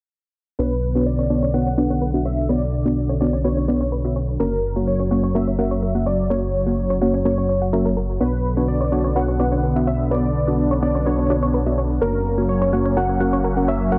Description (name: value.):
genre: progressive house.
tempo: 126 BPM.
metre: 4/4.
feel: straight.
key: B harmonic minor.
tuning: A4 = 441 Hz.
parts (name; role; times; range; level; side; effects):
plucky unison lead; melody; 0.6-14.0 s; A#4 to F#5; -29 LUFS; equal; analog chorus, dub echo.
supersaw pad; sustained chords; 0.6-14.0 s; D3 to D4; -27 LUFS; equal; low-pass filter.
analog pluck; arpeggios; 0.6-14.0 s; A#4 to F#5; -31 LUFS; equal; chorus, dub echo.
unison pluck; stabs; 0.6-14.0 s; A#3 to F#5; -26 LUFS; equal; none.
dark detuned saw bass; bass; 0.6-14.0 s; F#1 to B1; -25 LUFS; equal; none.
electronic hi-hat and shaker; drums; 0.6-14.0 s; none; -69 LUFS; equal; none.
room: light reverb.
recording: low-pass filter.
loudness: -20 LUFS.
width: mono.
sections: 0.6-14.0 A section.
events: filter sweep on synth arpeggio sound 0.6-14.0; filter sweep on supersaw synth 0.6-14.0; filter sweep 0.6-14.0.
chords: 0.6 Bmadd9; 4.4 F#; 8.2 Bmadd9; 12.0 F#.